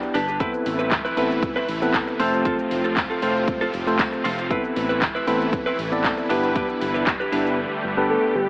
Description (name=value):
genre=dance-pop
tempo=117 BPM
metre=4/4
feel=straight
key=A minor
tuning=A4 = 440 Hz
part: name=bright tine electric piano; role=accompaniment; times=0.0-8.4 s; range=A3 to A5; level=-23 LUFS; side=equal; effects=medium stereo tremolo, sidechain pumping
part: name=direct-recorded clean electric guitar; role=riff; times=0.0-7.5 s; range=C4 to B4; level=-27 LUFS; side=right 1 dB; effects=lush chorus
part: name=pop drum kit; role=drums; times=0.0-7.6 s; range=handclaps, hi-hat, kick drum, shaker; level=-26 LUFS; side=equal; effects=none
part: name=round analog bass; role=bass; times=0.1-8.5 s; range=F1 to A1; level=-32 LUFS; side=equal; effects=sidechain pumping
part: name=filtered supersaw swell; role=sustained chords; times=0.4-8.5 s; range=A2 to B4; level=-27 LUFS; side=equal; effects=sidechain pumping
part: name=tambourine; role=percussion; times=0.9-7.2 s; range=none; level=-43 LUFS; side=left 1 dB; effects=none
part: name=soft octave-layered synth lead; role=melody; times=8.1-8.5 s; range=G4 to A4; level=-20 LUFS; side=equal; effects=chorus, tremolo
room=light reverb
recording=AM radio sound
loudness=-20 LUFS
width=side -26 dB against mid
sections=0.0-8.5 A section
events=tine electric piano fill 0.0-0.4; drums muted 7.6-8.5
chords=0.4 Amadd9; 2.2 F; 4.5 Amadd9; 6.3 Em7/G; 7.6 Gadd9